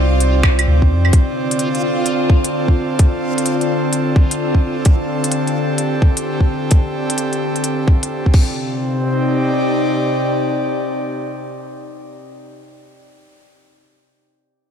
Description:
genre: future garage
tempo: 129 BPM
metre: 4/4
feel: swing 66% on 16ths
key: C dorian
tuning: A4 = 440 Hz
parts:
  - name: airy breathy pad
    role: sustained chords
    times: 0.0-12.4 s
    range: C3 to D5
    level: -18 LUFS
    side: equal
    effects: chorus, sidechain pumping
  - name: soft dub sub bass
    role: bass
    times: 0.0-1.1 s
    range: C2 to F2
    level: -14 LUFS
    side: equal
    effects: sidechain pumping
  - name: backwards swelling texture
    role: texture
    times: 0.0-8.6 s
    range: F4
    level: -28 LUFS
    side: left 2 dB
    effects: built-in reverb
  - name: organic electronic drum kit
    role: drums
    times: 0.2-8.5 s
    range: claves, crash cymbal, finger snaps, hi-hat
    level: -22 LUFS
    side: equal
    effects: none
  - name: electronic kick drum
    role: drums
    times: 0.4-8.5 s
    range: none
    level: -12 LUFS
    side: equal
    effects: none
room: light reverb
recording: none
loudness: -14 LUFS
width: side -8 dB against mid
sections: 0.0-8.6 A section; 8.6-12.3 B section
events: none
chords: 0.0 Cmadd9; 1.1 Dm7; 8.3 Csus4; 8.6 Cmadd9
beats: 0.20 0.66 | 1.13 1.59 2.06 2.52 | 2.99 3.45 3.92 4.38 | 4.85 5.31 5.78 6.24 | 6.71 7.17 7.64 8.11 | 8.57 9.04 9.50 9.96 | 10.43 10.89 11.36 11.83

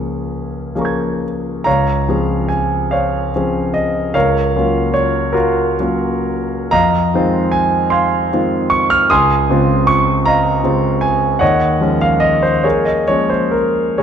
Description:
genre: classical, impressionist solo piano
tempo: 41-53 BPM (dotted quarters)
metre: 6/8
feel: rubato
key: Db major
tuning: A4 = 440 Hz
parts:
  - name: warm concert grand piano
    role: solo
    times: 0.0-14.0 s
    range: Db2 to Ab6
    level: -13 LUFS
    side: equal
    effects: none
room: moderate scoring stage reverb, RT60 1.6 s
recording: dark, warm production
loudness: -13 LUFS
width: side -8 dB against mid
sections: 0.0-1.7 A section; 1.7-14.0 A section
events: none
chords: 0.0 Db6; 1.7 Dbmaj7; 4.1 Gbmaj7/Db; 6.7 Fm7; 9.1 Dbmaj9; 11.4 Eb9sus4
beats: 0.28 | 1.66 2.92 | 4.15 5.36 | 6.72 7.91 | 9.11 10.26 | 11.41 12.64 | 13.99

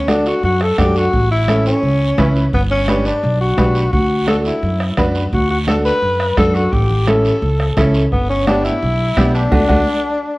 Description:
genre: latin, cumbia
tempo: 172 BPM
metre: 4/4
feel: straight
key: D major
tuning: A4 = 440 Hz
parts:
  - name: breathy tenor saxophone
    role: second line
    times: 0.0-10.4 s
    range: B3 to B4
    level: -18 LUFS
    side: left 1 dB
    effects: none
  - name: upright bass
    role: bass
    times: 0.0-9.8 s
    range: G1 to F#2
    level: -18 LUFS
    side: equal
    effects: none
  - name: bright upright piano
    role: accompaniment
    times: 0.1-9.8 s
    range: A3 to B4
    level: -20 LUFS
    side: right 1 dB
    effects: none
  - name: bombo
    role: percussion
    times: 0.1-9.8 s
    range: none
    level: -22 LUFS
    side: right 1 dB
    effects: none
  - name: congas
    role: percussion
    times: 0.1-9.8 s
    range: none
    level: -23 LUFS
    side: left 1 dB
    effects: none
  - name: guiro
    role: percussion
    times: 0.1-9.8 s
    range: none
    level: -32 LUFS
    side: right 3 dB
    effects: none
room: moderate large studio reverb, RT60 1.3 s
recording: worn, warbling old tape, cassette tape, warbly pitch drift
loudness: -13 LUFS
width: side -21 dB against mid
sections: 0.0-10.4 A section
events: tenor saxophone solo 0.0-10.4; band accent 9.5-10.4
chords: 0.0 D; 1.1 A; 2.5 G; 3.9 D; 6.7 A7; 8.1 G; 9.5 D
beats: 0.09 0.44 0.79 | 1.14 1.49 1.84 2.19 | 2.54 2.88 3.23 3.58 | 3.93 4.28 4.63 4.98 | 5.33 5.68 6.03 6.38 | 6.73 7.08 7.43 7.78 | 8.12 8.47 8.82 9.17 | 9.52 9.87 10.22

